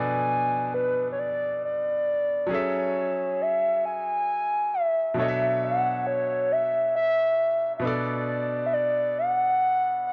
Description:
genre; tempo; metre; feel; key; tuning
R&B; 45 BPM (dotted quarters); 6/8; straight; B dorian; A4 = 440 Hz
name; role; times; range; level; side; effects
hollow clarinet-like synth lead; melody; 0.0-10.1 s; B4 to G#5; -26 LUFS; equal; chorus
clear grand piano; accompaniment; 0.0-10.1 s; B2 to E5; -34 LUFS; equal; none
room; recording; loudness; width
light reverb; worn, warbling old tape, cassette tape, warbly pitch drift; -25 LUFS; mono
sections
0.0-7.8 A section; 7.8-10.1 A section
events
none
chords
0.0 Bm7; 2.5 F#m9; 5.2 Bm11; 7.8 Bm7

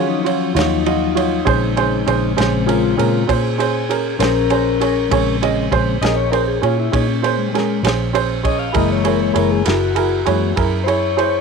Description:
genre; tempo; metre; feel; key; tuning
slow blues; 66 BPM (dotted quarters); 12/8; straight; Bb minor; A4 = 440 Hz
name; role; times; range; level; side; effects
warm upright piano; accompaniment; 0.0-11.4 s; Db4 to Eb5; -19 LUFS; right 12 dB; none
mellow tonewheel organ; sustained chords; 0.0-11.4 s; Db3 to F5; -19 LUFS; left 12 dB; slow rotary speaker
vintage muted fingered electric bass; bass; 0.0-11.4 s; Gb1 to Eb3; -21 LUFS; left 1 dB; none
warm soul drum kit; drums; 0.3-11.3 s; kick drum, ride cymbal, snare drum; -24 LUFS; equal; none
room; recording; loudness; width
light reverb; 1960s-style stereo with parts hard left and right; -15 LUFS; side -5 dB against mid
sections
0.0-11.4 A section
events
tonewheel organ solo 0.0-11.4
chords
0.0 Ebm7; 1.5 Bbm7; 8.8 Gb7

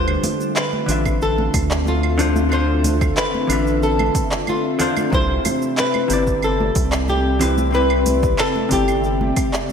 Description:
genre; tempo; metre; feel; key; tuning
sunset chillout; 92 BPM; 4/4; straight; D dorian; A4 = 442 Hz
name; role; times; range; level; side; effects
flamenco guitar; melody; 0.0-9.7 s; F4 to C5; -22 LUFS; left 2 dB; lush chorus, ping-pong delay
vintage hollow-body jazz guitar; accompaniment; 0.0-9.7 s; C3 to E5; -24 LUFS; moving between left 3 dB and right 3 dB; auto-pan, diffuse ambient delay
ethereal airy pad; sustained chords; 0.0-9.7 s; C4 to E5; -24 LUFS; left 1 dB; ensemble chorus, built-in reverb
round analog bass; bass; 0.0-9.3 s; G1 to D2; -21 LUFS; right 1 dB; none
smooth R&B drum kit; drums; 0.1-9.7 s; claves, handclaps, hi-hat, shaker; -26 LUFS; right 2 dB; overdrive, studio reverb
congas; percussion; 0.2-9.7 s; none; -29 LUFS; right 2 dB; none
electronic kick drum; drums; 1.1-9.5 s; none; -24 LUFS; equal; overdrive, studio reverb
room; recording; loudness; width
wet lush hall reverb, RT60 2.3 s; dreamy mix soaked in reverb; -16 LUFS; side -7 dB against mid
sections
0.0-9.7 A section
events
none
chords
0.0 Dm7; 5.1 Cmaj7

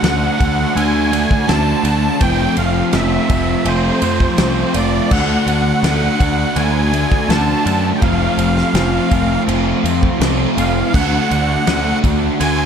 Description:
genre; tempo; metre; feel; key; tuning
rock, shoegaze and dream pop; 82 BPM; 4/4; straight; unclear; A4 = 440 Hz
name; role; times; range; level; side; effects
musette accordion; melody; 0.0-12.7 s; C5 to A5; -21 LUFS; right 2 dB; tape echo
crunchy overdriven guitar; riff; 0.0-12.7 s; D3 to F#4; -17 LUFS; equal; analog chorus
growling picked electric bass; bass; 0.0-12.7 s; F1 to F#2; -20 LUFS; equal; overdrive
loose indie drum kit; drums; 0.0-12.6 s; crash cymbal, kick drum, ride cymbal, snare drum; -20 LUFS; equal; none
room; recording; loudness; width
light reverb, small room ambience; none; -13 LUFS; side -7 dB against mid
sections
0.0-12.7 A section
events
none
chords
0.0 D; 2.2 Fmaj7; 5.1 D; 8.0 F; 10.9 D

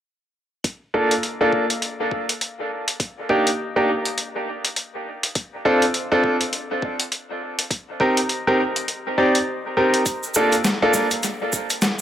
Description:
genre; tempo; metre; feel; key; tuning
glitch hop; 102 BPM; 4/4; swing 59% on 16ths; unclear; A4 = 437 Hz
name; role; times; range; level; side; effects
boom bap sampler-style drum kit; drums; 0.6-12.0 s; hi-hat, snare drum; -23 LUFS; left 1 dB; dub echo
electronic kick drum; drums; 0.6-11.7 s; none; -29 LUFS; left 1 dB; high-pass filter on kick
bright baby grand piano; stabs; 0.9-11.1 s; Bb3 to D5; -20 LUFS; equal; sidechain pumping, low-pass filter, dub echo
tube shaker; percussion; 10.1-12.0 s; none; -26 LUFS; right 3 dB; none
room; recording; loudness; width
wet spring reverb, RT60 1.9 s; echo-heavy mix; -19 LUFS; side -10 dB against mid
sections
0.6-12.0 A section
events
none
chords
0.6 Bbmaj7; 3.0 Bbadd11; 5.4 Dm7; 7.7 Cm7; 10.1 Bbmaj7

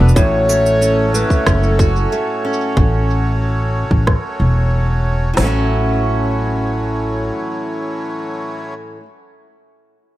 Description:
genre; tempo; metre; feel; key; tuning
folktronica; 92 BPM; 4/4; straight; A major; A4 = 440 Hz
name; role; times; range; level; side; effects
accordion; sustained chords; 0.0-8.7 s; A2 to C#4; -24 LUFS; right 1 dB; none
picked steel-string acoustic guitar; arpeggios; 0.0-9.1 s; A2 to B4; -20 LUFS; right 1 dB; tape echo
upright bass; bass; 0.0-7.3 s; E1 to A1; -16 LUFS; equal; none
electronic cabasa and rim click; drums; 0.1-5.3 s; none; -23 LUFS; right 1 dB; low-pass filter on perc, low-pass filter on hats, low-pass filter on snare, low-pass filter on room
dark clarinet; melody; 0.2-2.7 s; A4 to C#5; -19 LUFS; left 1 dB; tape echo
organic electronic drum kit; drums; 0.2-5.5 s; hi-hat, kick drum, snare drum; -15 LUFS; equal; none
room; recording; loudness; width
light reverb, small room ambience; none; -14 LUFS; side -15 dB against mid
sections
0.2-5.4 A section; 5.4-8.0 B section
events
filter sweep on drum 0.2-5.4; filter sweep on upright bass 0.2-5.4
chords
0.2 A6

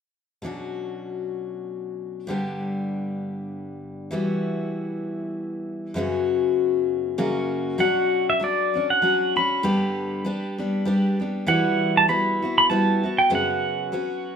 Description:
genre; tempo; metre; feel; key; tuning
acoustic folk duo or small band; 98 BPM; 3/4; swing 56% on 8ths; B minor; A4 = 440 Hz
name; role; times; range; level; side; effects
picked steel-string acoustic guitar; accompaniment; 0.4-14.4 s; F#2 to G4; -24 LUFS; left 2 dB; none
pedal steel guitar; melody; 7.8-14.4 s; D5 to B5; -21 LUFS; right 2 dB; none
room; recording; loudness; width
moderate small room reverb, RT60 0.6 s; minimal, uncompressed stereo recording; -21 LUFS; side -7 dB against mid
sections
0.4-7.8 A section; 7.8-14.4 B section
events
none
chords
0.4 Bmadd9; 2.3 G; 4.1 Emadd9; 6.0 F#sus4; 7.2 F#; 7.8 Bmadd9; 9.6 G; 11.5 Emadd9; 13.3 F#sus4

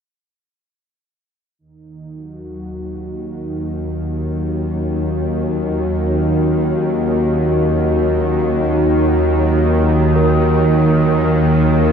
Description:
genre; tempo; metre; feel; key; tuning
dark ambient drone; free time; none; none; Eb minor; A4 = 440 Hz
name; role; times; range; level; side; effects
dark analog pad; sustained chords; 1.6-11.9 s; Eb4 to Db5; -20 LUFS; equal; chorus
bowed-like drone; drone; 2.6-11.9 s; Eb2 to Eb3; -16 LUFS; equal; built-in reverb
bronze singing bowl; texture; 10.2-11.9 s; Bb4; -22 LUFS; left 2 dB; stereo widening
room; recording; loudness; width
wet cathedral reverb, RT60 5.2 s; dark, warm production; -14 LUFS; side -7 dB against mid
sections
1.6-11.9 A section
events
fade-out on analog synth pad 1.6-11.9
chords
1.6 Ebm

